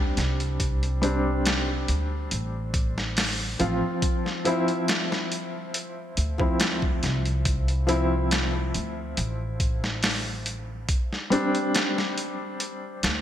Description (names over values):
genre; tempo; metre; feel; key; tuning
trip hop; 70 BPM; 4/4; straight; D minor; A4 = 439 Hz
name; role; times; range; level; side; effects
felt-muted upright piano; accompaniment; 0.0-13.2 s; F3 to F4; -28 LUFS; equal; tremolo, tape echo
upright bass; bass; 0.0-13.2 s; A1 to D2; -28 LUFS; equal; none
boom bap sampler-style drum kit; drums; 0.2-13.2 s; hi-hat, kick drum, snare drum; -26 LUFS; equal; studio reverb, gated reverb
room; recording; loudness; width
moderate plate reverb, RT60 2.6 s; bright 1980s-style digital production; -23 LUFS; side -10 dB against mid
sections
0.0-13.2 A section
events
none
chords
0.0 Csus2; 4.0 Dm7; 10.9 Csus2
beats
| 0.60 1.46 2.31 3.17 | 4.03 4.88 5.74 6.60 | 7.46 8.31 9.17 10.03 | 10.88 11.74 12.60